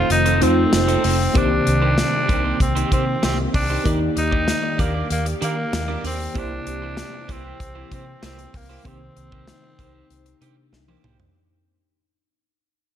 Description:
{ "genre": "1980s-style pop", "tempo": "96 BPM", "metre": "4/4", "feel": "straight", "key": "C dorian", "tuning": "A4 = 442 Hz", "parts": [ { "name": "raspy tenor saxophone", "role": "melody", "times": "0.0-10.7 s", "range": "Bb3 to Eb4", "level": "-24 LUFS", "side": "equal", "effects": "none" }, { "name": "mellow FM electric piano", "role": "accompaniment", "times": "0.0-11.4 s", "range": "C3 to D5", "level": "-24 LUFS", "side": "left 1 dB", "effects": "chorus, phaser" }, { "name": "string machine, violas", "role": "sustained chords", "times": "0.0-11.3 s", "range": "Eb3 to D5", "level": "-29 LUFS", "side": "equal", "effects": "phaser, ensemble chorus" }, { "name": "electric guitar at the edge of break-up", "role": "riff", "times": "0.0-11.2 s", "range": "Bb3 to D5", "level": "-30 LUFS", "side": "right 8 dB", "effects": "wide subtle chorus" }, { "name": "vintage muted fingered electric bass", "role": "bass", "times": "0.1-11.3 s", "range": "F1 to Eb3", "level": "-24 LUFS", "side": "equal", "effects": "none" }, { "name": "modern studio drum kit", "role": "drums", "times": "0.1-11.3 s", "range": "hi-hat, kick drum, snare drum, tambourine, toms", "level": "-24 LUFS", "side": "equal", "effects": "gated reverb" }, { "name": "marimba with soft mallets", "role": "second line", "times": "9.5-11.3 s", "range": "D4 to Eb4", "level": "-61 LUFS", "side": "left 8 dB", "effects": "digital delay" } ], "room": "light reverb, small room ambience", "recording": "none", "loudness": "-17 LUFS", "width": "side -10 dB against mid", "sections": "0.0-11.4 A section", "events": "fade-out 0.0-11.4; drum fill 10.7-11.4", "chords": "0.0 F7; 1.4 Cm7; 3.9 Ebmaj7; 6.4 C7; 8.9 Cm7", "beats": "0.10 0.73 | 1.35 1.98 2.60 3.23 | 3.85 4.48 5.10 5.73 | 6.35 6.98 7.60 8.23 | 8.85 9.48 10.10 10.73" }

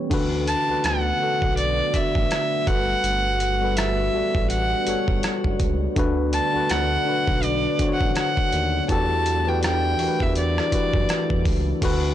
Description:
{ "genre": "contemporary R&B", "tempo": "82 BPM", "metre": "4/4", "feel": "swing 58% on 16ths", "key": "D major", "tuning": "A4 = 440 Hz", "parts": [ { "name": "tine electric piano", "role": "accompaniment", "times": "0.0-12.1 s", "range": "D3 to D5", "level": "-26 LUFS", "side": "left 3 dB", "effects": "none" }, { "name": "deep dark ambient pad", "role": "sustained chords", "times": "0.0-12.1 s", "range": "D3 to A4", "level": "-31 LUFS", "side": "right 1 dB", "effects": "chorus, built-in reverb, sidechain pumping" }, { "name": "smooth synth bass", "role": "bass", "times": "0.1-12.1 s", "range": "F#1 to F#2", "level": "-26 LUFS", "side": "right 1 dB", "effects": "none" }, { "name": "dusty soul sampler-style drum kit", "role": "drums", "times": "0.1-12.0 s", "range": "crash cymbal, hi-hat, kick drum, rim click", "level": "-25 LUFS", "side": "right 1 dB", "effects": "overdrive" }, { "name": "rich violin", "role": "melody", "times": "0.5-11.4 s", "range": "D5 to A5", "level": "-24 LUFS", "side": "right 1 dB", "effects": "ping-pong delay" } ], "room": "digital ambience", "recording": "blown-out, overdriven recording, overdrive", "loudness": "-20 LUFS", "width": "side -11 dB against mid", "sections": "0.1-11.8 A section", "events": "none", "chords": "0.1 D6; 2.7 Gmaj9; 6.0 D6; 8.9 Em11", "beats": "| 0.11 0.84 1.58 2.31 | 3.04 3.77 4.50 5.24 | 5.97 6.70 7.43 8.16 | 8.89 9.62 10.36 11.09 | 11.82" }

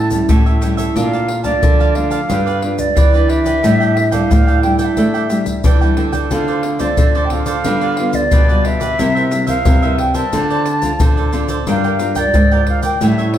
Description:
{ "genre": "samba and choro", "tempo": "90 BPM", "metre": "4/4", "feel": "straight", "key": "unclear", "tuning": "A4 = 439 Hz", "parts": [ { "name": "mellow wooden flute", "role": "melody", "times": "0.0-13.4 s", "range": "C#5 to A5", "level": "-19 LUFS", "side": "right 1 dB", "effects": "plate reverb" }, { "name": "nylon-string guitar", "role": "accompaniment", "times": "0.0-13.4 s", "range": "G2 to B4", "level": "-22 LUFS", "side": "left 3 dB", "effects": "none" }, { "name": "nylon-string guitar", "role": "bass", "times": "0.0-13.4 s", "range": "G2 to A3", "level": "-18 LUFS", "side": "right 1 dB", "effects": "none" }, { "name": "tube shaker, surdo and pandeiro", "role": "percussion", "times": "0.1-13.4 s", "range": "none", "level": "-16 LUFS", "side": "left 1 dB", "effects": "none" }, { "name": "cavaquinho", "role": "accompaniment", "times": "0.3-13.4 s", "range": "D4 to A5", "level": "-23 LUFS", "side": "right 6 dB", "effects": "none" } ], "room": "wet large studio reverb, RT60 0.8 s", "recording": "heard from further back in the room", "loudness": "-12 LUFS", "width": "side -11 dB against mid", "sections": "0.0-13.4 A section", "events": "none", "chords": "0.0 A7; 1.0 Bbmaj7; 2.3 G7; 3.6 A7sus4; 6.3 Dm7; 7.7 G7/D; 9.0 C7; 10.3 Dm7; 11.7 Gm7", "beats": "0.30 | 0.96 1.63 2.30 2.97 | 3.64 4.31 4.97 5.64 | 6.31 6.98 7.65 8.32 | 8.99 9.66 10.33 11.00 | 11.67 12.34 13.01" }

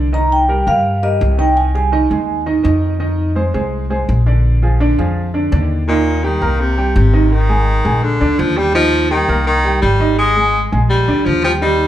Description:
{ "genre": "latin", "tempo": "167 BPM", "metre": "4/4", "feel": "straight", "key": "unclear", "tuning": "A4 = 440 Hz", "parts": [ { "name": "clear concert grand piano", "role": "accompaniment", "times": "0.0-11.9 s", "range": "D3 to Bb5", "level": "-18 LUFS", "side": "right 2 dB", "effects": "none" }, { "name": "upright bass", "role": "bass", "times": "0.0-11.9 s", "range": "Ab1 to G2", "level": "-16 LUFS", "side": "equal", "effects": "none" }, { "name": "vibraphone with soft mallets", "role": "melody", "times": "0.1-2.4 s", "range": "Eb5 to Bb5", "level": "-16 LUFS", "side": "equal", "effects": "none" }, { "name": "warm baritone saxophone", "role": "second line", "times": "5.9-11.9 s", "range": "Bb2 to Ab3", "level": "-15 LUFS", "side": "left 1 dB", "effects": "none" } ], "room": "moderate large studio reverb, RT60 0.8 s", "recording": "band playing live in one room", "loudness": "-12 LUFS", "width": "side -12 dB against mid", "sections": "0.0-5.9 A section; 5.9-11.9 B section", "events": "none", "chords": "0.1 Cm7; 1.6 Abmaj7/C; 3.0 Fm7; 4.4 Bb7; 5.9 Eb; 6.6 Cm7; 7.3 Absus2; 8.0 Bb7; 8.8 Eb; 9.5 Cm7; 10.2 Absus2; 10.9 Bb7", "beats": "| 0.13 0.49 0.85 1.21 | 1.57 1.93 2.29 2.65 | 3.01 3.37 3.73 4.08 | 4.44 4.80 5.16 5.52 | 5.88 6.24 6.60 6.96 | 7.32 7.67 8.03 8.39 | 8.75 9.11 9.47 9.83 | 10.19 10.54 10.90 11.26 | 11.62" }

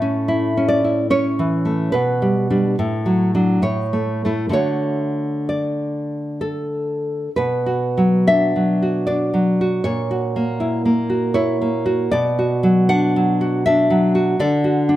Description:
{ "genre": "romantic piece for solo classical guitar", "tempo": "63-82 BPM", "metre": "3/4", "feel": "rubato", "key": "D major, B minor from 7.4 s", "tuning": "A4 = 440 Hz", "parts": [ { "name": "nylon-string guitar", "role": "solo", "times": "0.0-15.0 s", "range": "A2 to F#5", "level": "-16 LUFS", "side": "equal", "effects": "none" } ], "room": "moderate recital hall reverb, RT60 1.3 s", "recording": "none", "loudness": "-16 LUFS", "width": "side -14 dB against mid", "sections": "0.0-7.4 A section; 7.4-15.0 B section", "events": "none", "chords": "0.0 A; 1.9 G/B; 2.8 D/A; 3.6 A; 4.6 D; 7.4 Bm; 9.8 F#7/A#; 12.1 Bm; 14.4 Bm/D (rootless)", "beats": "0.27 1.11 | 1.93 2.77 3.65 | 4.56 5.50 6.43 | 7.35 8.26 9.07 | 9.84 10.60 11.37 | 12.13 12.90 13.64 | 14.38" }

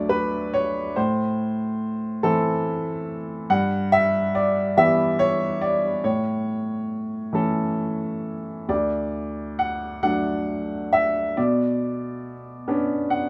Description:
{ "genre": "classical, lyrical solo piano", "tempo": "44-48 BPM (dotted quarters)", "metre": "6/8", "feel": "rubato", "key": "D major", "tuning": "A4 = 440 Hz", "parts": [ { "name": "clear baby grand piano", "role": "solo", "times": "0.0-13.3 s", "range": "D2 to F#5", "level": "-24 LUFS", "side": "equal", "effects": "none" } ], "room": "light reverb", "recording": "none", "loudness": "-24 LUFS", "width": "mono", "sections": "0.0-13.3 A section", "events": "grand piano fill 12.7-13.3", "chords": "0.0 D; 1.0 Am; 3.5 Em/G; 6.0 A; 8.7 D; 11.4 Bmadd9", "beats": "| 0.97 2.25 | 3.51 4.77 | 6.04 7.34 | 8.69 10.03 | 11.38 12.69" }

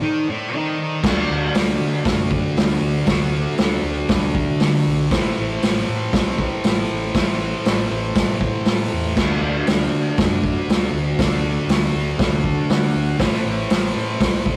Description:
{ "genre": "garage rock duo or trio", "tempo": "118 BPM", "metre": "4/4", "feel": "straight", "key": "unclear", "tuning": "A4 = 440 Hz", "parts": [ { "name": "overdriven combo organ", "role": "sustained chords", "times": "0.0-14.6 s", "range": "C4 to A5", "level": "-31 LUFS", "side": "equal", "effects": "spring reverb" }, { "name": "thick fuzz guitar", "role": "riff", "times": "0.0-14.6 s", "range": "A2 to D#4", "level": "-24 LUFS", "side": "equal", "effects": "distortion" }, { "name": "hollow-body short-scale picked electric bass", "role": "bass", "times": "1.0-14.6 s", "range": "A1 to D3", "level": "-30 LUFS", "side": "equal", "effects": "none" }, { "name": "vintage drum kit", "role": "drums", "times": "1.0-14.6 s", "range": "crash cymbal, hi-hat, kick drum, snare drum", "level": "-22 LUFS", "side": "equal", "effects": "none" } ], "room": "wet stone room reverb, RT60 1.1 s", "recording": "rough rehearsal-room recording, warm saturation", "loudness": "-20 LUFS", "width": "mono", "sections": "0.0-1.0 A section; 1.0-14.6 B section", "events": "break 0.0-1.0; transistor combo organ fill 12.2-13.2", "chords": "0.0 Am; 1.0 D; 5.1 Am; 9.2 D; 13.2 Am", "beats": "0.02 0.53 | 1.04 1.55 2.06 2.57 | 3.08 3.59 4.10 4.61 | 5.12 5.62 6.13 6.64 | 7.15 7.65 8.16 8.66 | 9.17 9.68 10.18 10.69 | 11.19 11.70 12.20 12.70 | 13.21 13.71 14.21" }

